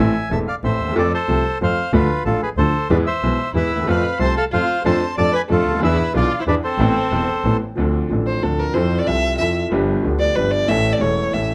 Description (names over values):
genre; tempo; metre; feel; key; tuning
tango; 185 BPM; 3/4; rubato; A harmonic minor, D minor from 7.8 s; A4 = 441 Hz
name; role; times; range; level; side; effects
bandoneon; melody; 0.0-7.6 s; F4 to D6; -24 LUFS; equal; none
bright upright piano; accompaniment; 0.0-11.5 s; E1 to A4; -23 LUFS; equal; none
rich double bass; bass; 0.0-11.5 s; E1 to F2; -24 LUFS; equal; none
rich violin; second line; 3.5-11.5 s; A3 to E5; -24 LUFS; equal; none
room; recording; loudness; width
light reverb; dark, warm production; -19 LUFS; mono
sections
0.0-7.8 A section; 7.8-11.5 B section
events
violin solo 7.8-11.5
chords
0.0 Am; 1.0 F; 1.9 Dm; 2.9 E; 3.9 F; 4.8 Dm/F; 5.8 E7; 6.8 Amadd9; 7.8 Dm7; 8.7 Fmaj7; 9.7 G7; 10.7 A